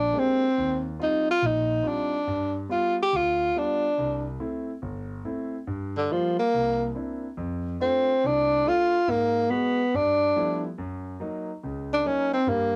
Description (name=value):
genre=jazz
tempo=141 BPM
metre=4/4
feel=swing 66% on 8ths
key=unclear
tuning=A4 = 440 Hz
part: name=breathy tenor saxophone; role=melody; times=0.0-12.8 s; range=D3 to G4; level=-25 LUFS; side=equal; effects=cassette tape
part: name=clear concert grand piano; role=accompaniment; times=0.0-12.8 s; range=G1 to G4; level=-34 LUFS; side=equal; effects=none
room=wet booth ambience, RT60 0.2 s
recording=home recording on cassette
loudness=-26 LUFS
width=mono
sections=0.0-7.4 A section; 7.4-12.8 B section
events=none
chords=0.0 Bb13; 0.6 Eb69; 2.3 G7; 4.0 C6; 5.7 Gm7; 6.5 C9; 7.4 F6; 9.1 Abm7; 9.9 G13; 10.8 Gb6